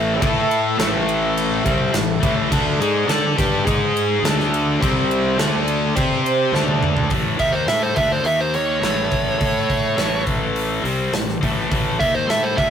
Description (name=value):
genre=hard rock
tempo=104 BPM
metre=4/4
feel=straight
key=unclear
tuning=A4 = 440 Hz
part: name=chorused pulse-width pad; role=sustained chords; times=0.0-7.1 s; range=G4 to D#6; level=-26 LUFS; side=right 2 dB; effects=none
part: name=heavy high-gain guitar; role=riff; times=0.0-12.7 s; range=A2 to D5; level=-22 LUFS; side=left 5 dB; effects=distortion
part: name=high-gain distorted guitar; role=riff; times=0.0-12.7 s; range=A2 to D5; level=-27 LUFS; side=right 6 dB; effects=distortion
part: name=sludgy distorted guitar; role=riff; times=0.0-7.1 s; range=A2 to D5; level=-24 LUFS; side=equal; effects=overdrive
part: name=fuzz fingered electric bass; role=bass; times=0.0-12.7 s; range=A1 to D3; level=-25 LUFS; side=equal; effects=overdrive
part: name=gated 80s drum kit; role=drums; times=0.2-12.7 s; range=hi-hat, kick drum, ride cymbal, snare drum, toms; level=-24 LUFS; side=equal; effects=none
part: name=smooth overdriven lead guitar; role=melody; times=7.4-12.7 s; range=C5 to E5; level=-19 LUFS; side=right 2 dB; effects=none
room=moderate booth ambience, RT60 0.2 s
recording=rough rehearsal-room recording, warm saturation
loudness=-17 LUFS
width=side -8 dB against mid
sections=0.0-7.1 A section; 7.1-12.7 B section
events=drum fill 6.5-7.1; lead electric guitar solo 7.1-12.7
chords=0.0 A; 2.5 D5; 3.7 G#5; 4.2 D5; 4.8 C5; 5.4 D5; 6.0 C5; 6.5 D5; 7.1 A5; 8.3 D#5; 8.8 A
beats=| 0.22 0.79 1.37 1.94 | 2.52 3.09 3.66 4.24 | 4.81 5.39 5.96 6.54 | 7.11 7.69 8.26 8.84 | 9.41 9.99 10.56 11.14 | 11.71 12.29